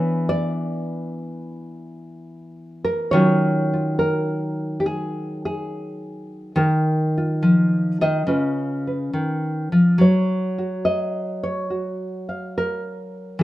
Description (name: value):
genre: solo jazz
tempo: 70 BPM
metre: 4/4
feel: swing 69% on 8ths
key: unclear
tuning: A4 = 441 Hz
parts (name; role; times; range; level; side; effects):
- nylon-string guitar; solo; 0.0-13.4 s; Db3 to F5; -20 LUFS; equal; none
room: moderate spring reverb, RT60 1.3 s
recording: minimal, uncompressed stereo recording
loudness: -19 LUFS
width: side -16 dB against mid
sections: 0.0-10.0 A section; 10.0-13.4 B section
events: none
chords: 0.0 E7; 3.1 Ebm9; 8.3 Db9; 10.0 Gbmaj7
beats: 0.56 1.41 2.27 | 3.12 3.98 4.83 5.69 | 6.54 7.40 8.26 9.11 | 9.97 10.82 11.68 12.53 | 13.39